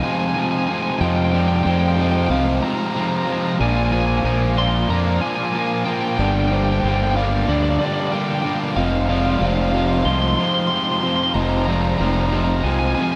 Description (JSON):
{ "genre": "post-rock", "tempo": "93 BPM", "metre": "4/4", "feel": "straight", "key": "F dorian", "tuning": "A4 = 440 Hz", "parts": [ { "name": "lightly driven lead guitar", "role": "melody", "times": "0.0-13.2 s", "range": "D5 to C6", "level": "-26 LUFS", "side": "equal", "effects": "tape echo" }, { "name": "rich symphonic string section", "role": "sustained chords", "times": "0.0-13.2 s", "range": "G3 to F5", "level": "-31 LUFS", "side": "equal", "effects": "none" }, { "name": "vibraphone with medium mallets", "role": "arpeggios", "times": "0.0-13.0 s", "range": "C5 to Eb5", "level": "-33 LUFS", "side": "equal", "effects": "tape echo" }, { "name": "distorted electric guitar", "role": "riff", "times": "0.0-13.2 s", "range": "F2 to D4", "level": "-29 LUFS", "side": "equal", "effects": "distortion" }, { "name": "distorted electric guitar", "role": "riff", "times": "0.0-13.2 s", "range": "F2 to Bb3", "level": "-25 LUFS", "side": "equal", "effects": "distortion" }, { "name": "fuzz fingered electric bass", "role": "bass", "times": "1.0-12.9 s", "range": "F1 to F2", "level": "-23 LUFS", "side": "equal", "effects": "overdrive" } ], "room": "moderate plate reverb, RT60 2.6 s", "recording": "dreamy mix soaked in reverb", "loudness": "-19 LUFS", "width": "mono", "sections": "0.0-13.2 A section", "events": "none", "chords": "0.0 Fm7; 3.6 Bb7; 6.2 Gm7; 8.8 Fm7" }